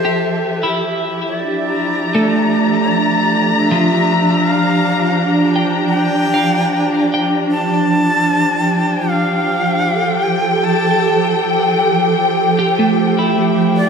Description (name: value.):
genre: ambient.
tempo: 77 BPM.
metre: 4/4.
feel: straight.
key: F major.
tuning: A4 = 440 Hz.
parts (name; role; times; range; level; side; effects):
breathy bright shakuhachi; melody; 0.0-13.9 s; C5 to A5; -20 LUFS; equal; ping-pong delay.
dark symphonic string section; sustained chords; 0.0-13.9 s; F3 to Bb5; -15 LUFS; equal; none.
twelve-string electric guitar; arpeggios; 0.0-13.9 s; F3 to G5; -18 LUFS; right 1 dB; wide subtle chorus, ping-pong delay.
organ-like drone; drone; 0.9-13.9 s; F3 to G4; -24 LUFS; right 2 dB; ensemble chorus, built-in reverb.
room: wet concert hall reverb, RT60 2.3 s.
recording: none.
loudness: -13 LUFS.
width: side -6 dB against mid.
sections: 0.0-13.9 A section.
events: fade-in on synth drone 0.0-13.9; fade-in on shakuhachi 0.0-13.9.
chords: 0.0 Fmaj9; 1.2 Bb6/F; 7.5 Fadd9.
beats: 0.46 | 1.23 2.00 2.78 3.56 | 4.34 5.12 5.90 6.69 | 7.49 8.28 9.06 9.85 | 10.62 11.40 12.19 12.97 | 13.74.